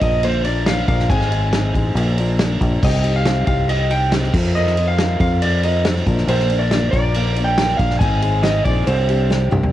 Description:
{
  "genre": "folk rock and heartland rock",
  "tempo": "139 BPM",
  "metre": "4/4",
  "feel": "straight",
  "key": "unclear",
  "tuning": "A4 = 441 Hz",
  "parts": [
    { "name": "electric slide guitar", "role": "melody", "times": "0.0-9.5 s", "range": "C5 to Ab5", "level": "-22 LUFS", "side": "right 1 dB", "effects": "tape echo" },
    { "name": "picked acoustic archtop guitar", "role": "accompaniment", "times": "0.0-9.7 s", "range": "Ab2 to Bb4", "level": "-24 LUFS", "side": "left 4 dB", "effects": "cassette tape" },
    { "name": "fingered electric bass", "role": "bass", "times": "0.0-9.7 s", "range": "Ab1 to F2", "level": "-19 LUFS", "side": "equal", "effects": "none" },
    { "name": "natural country drum kit", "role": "drums", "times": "0.0-9.7 s", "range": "crash cymbal, kick drum, ride cymbal, snare drum, toms", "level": "-20 LUFS", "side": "equal", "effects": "cassette tape" }
  ],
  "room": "small room ambience",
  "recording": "home recording on cassette",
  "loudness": "-15 LUFS",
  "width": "side -13 dB against mid",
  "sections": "0.0-9.7 A section",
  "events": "drum fill 9.3-9.7",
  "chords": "0.0 Bb; 1.1 Ab; 2.0 Bb; 2.8 Cm; 4.3 Fsus4; 6.1 Bb; 8.0 Ab; 8.9 Cmadd9"
}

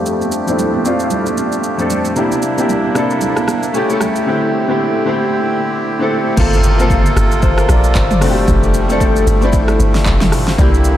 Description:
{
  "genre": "amapiano",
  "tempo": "114 BPM",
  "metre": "4/4",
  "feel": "swing 58% on 16ths",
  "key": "unclear",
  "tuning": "A4 = 440 Hz",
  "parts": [
    { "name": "clear baby grand piano", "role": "accompaniment", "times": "0.0-11.0 s", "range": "F2 to D5", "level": "-16 LUFS", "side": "left 2 dB", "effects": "ensemble chorus, low-pass filter" },
    { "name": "accordion", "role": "sustained chords", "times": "0.0-11.0 s", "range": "C3 to A4", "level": "-19 LUFS", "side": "right 2 dB", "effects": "low-pass filter" },
    { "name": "deep house drum kit", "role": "drums", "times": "0.1-11.0 s", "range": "crash cymbal, handclaps, hi-hat, kick drum, rim click, shaker, snare drum, toms", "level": "-18 LUFS", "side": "equal", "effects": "overdrive" },
    { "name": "congas", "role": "percussion", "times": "0.2-4.1 s", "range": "none", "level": "-25 LUFS", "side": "right 6 dB", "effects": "none" },
    { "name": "deep log drum bass", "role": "bass", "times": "6.4-11.0 s", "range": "F1 to C2", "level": "-15 LUFS", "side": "equal", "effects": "none" },
    { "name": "impact", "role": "sound effects", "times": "6.4-8.5 s", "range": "none", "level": "-21 LUFS", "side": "equal", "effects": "none" }
  ],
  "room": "moderate cathedral reverb, RT60 5.7 s",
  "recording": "dreamy mix soaked in reverb",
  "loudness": "-12 LUFS",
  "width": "side -12 dB against mid",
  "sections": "0.0-6.4 A section; 6.4-11.0 B section",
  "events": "filter sweep 0.0-6.4; drop 6.4-11.0; impact 6.4-8.5",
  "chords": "0.0 F69; 2.2 C9; 3.7 A7; 4.3 D9sus4; 6.4 Gm11; 8.2 F69"
}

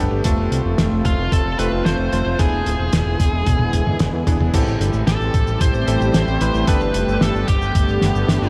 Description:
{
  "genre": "synthwave",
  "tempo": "112 BPM",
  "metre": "4/4",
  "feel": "straight",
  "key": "A minor",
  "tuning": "A4 = 441 Hz",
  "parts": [
    { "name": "lush unison pad", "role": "sustained chords", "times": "0.0-8.5 s", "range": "D3 to G4", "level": "-26 LUFS", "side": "equal", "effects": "chorus, sidechain pumping" },
    { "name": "bright electric grand piano", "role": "stabs", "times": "0.0-6.8 s", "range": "A3 to C5", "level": "-29 LUFS", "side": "equal", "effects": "tape echo" },
    { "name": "fat analog bass", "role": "bass", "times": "0.0-8.5 s", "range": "D1 to E2", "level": "-24 LUFS", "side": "equal", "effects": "none" },
    { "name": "cloth-damped thuddy drum kit", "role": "drums", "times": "0.2-8.5 s", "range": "crash cymbal, hi-hat, shaker, snare drum, toms", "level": "-26 LUFS", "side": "equal", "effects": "none" },
    { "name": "electronic kick drum", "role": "drums", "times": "0.2-7.9 s", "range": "none", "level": "-21 LUFS", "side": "equal", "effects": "none" },
    { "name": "high-gain lead guitar", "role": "melody", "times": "1.1-8.5 s", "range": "F4 to C5", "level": "-27 LUFS", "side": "equal", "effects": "distortion, tape echo" }
  ],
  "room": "moderate cathedral reverb, RT60 5.4 s",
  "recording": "dreamy mix soaked in reverb",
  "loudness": "-18 LUFS",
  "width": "mono",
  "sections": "0.0-4.5 A section; 4.5-8.5 B section",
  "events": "drum fill 3.5-4.5",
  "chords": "0.3 F; 2.4 E7; 4.5 Am7; 6.7 Gadd9"
}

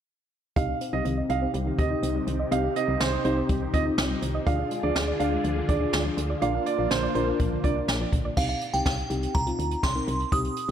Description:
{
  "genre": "synth-pop",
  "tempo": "123 BPM",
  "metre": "4/4",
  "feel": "straight",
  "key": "C minor",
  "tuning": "A4 = 441 Hz",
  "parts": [
    { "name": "clear baby grand piano", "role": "second line", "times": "0.6-7.7 s", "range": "C5 to F5", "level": "-30 LUFS", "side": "right 9 dB", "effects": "tape echo" },
    { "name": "muted felt-like synth keys", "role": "accompaniment", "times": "0.6-10.7 s", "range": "C4 to Bb4", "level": "-31 LUFS", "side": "left 3 dB", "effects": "chorus, low-pass filter" },
    { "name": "string machine, violas", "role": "sustained chords", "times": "0.6-8.4 s", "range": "C3 to Ab4", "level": "-32 LUFS", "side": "left 1 dB", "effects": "ensemble chorus, low-pass filter" },
    { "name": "soft round pluck", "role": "arpeggios", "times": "0.6-8.3 s", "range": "D3 to Eb5", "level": "-33 LUFS", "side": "left 1 dB", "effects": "chorus, low-pass filter, tape echo" },
    { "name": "solid FM bass", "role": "bass", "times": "0.6-10.7 s", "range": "Bb1 to Eb2", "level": "-30 LUFS", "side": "equal", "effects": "none" },
    { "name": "jazz brush drum kit", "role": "drums", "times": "0.6-10.7 s", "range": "crash cymbal, hi-hat, kick drum, snare drum", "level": "-29 LUFS", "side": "equal", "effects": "none" },
    { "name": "glassy synth bell", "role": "melody", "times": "8.4-10.7 s", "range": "F5 to Eb6", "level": "-29 LUFS", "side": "right 2 dB", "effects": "chorus, tremolo, tape echo" }
  ],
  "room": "light reverb, small room ambience",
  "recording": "none",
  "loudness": "-23 LUFS",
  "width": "side -9 dB against mid",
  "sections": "0.6-8.4 A section; 8.4-10.7 B section",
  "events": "filter sweep 0.6-8.4",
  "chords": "0.6 Cm; 4.5 Ddim; 6.4 Bb; 8.4 Cm"
}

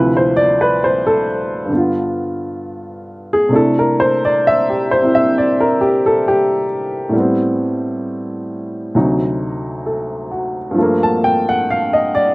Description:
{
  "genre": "solo jazz",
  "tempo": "66 BPM",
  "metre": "4/4",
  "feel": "swing 67% on 8ths",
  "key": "unclear",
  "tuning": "A4 = 440 Hz",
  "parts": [
    { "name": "warm upright piano", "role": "solo", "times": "0.0-12.3 s", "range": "D2 to A5", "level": "-14 LUFS", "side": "equal", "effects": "none" }
  ],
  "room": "little or no reverb",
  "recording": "recorded outdoors, with no room sound",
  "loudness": "-14 LUFS",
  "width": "side -24 dB against mid",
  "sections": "0.0-12.3 A section",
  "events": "upright piano solo 0.0-12.3",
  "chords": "0.0 Dm9; 1.7 G7; 3.5 C69; 7.1 Am9; 8.9 D7b9; 10.8 Gm9"
}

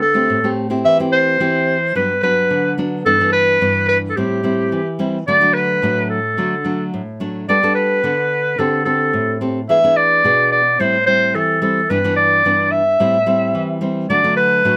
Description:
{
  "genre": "samba",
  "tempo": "109 BPM",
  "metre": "4/4",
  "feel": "straight",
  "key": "unclear",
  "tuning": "A4 = 440 Hz",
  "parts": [
    { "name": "clear clarinet", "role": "melody", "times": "0.0-14.8 s", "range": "G4 to E5", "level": "-17 LUFS", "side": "equal", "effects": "none" },
    { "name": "nylon-string guitar", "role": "accompaniment", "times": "0.0-14.8 s", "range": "G2 to A4", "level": "-22 LUFS", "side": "equal", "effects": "none" }
  ],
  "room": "light reverb",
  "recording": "close, detailed microphones",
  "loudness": "-16 LUFS",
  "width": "mono",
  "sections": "0.0-14.8 A section",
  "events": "none",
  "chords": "0.0 D7sus4; 0.8 C/E; 2.0 Gmaj7; 3.1 Em7/G; 4.2 Am7; 5.3 D; 7.5 Gadd9; 8.6 D7sus4; 9.7 E7; 10.8 Am7; 11.9 Em7/G; 13.0 Am7; 14.1 D"
}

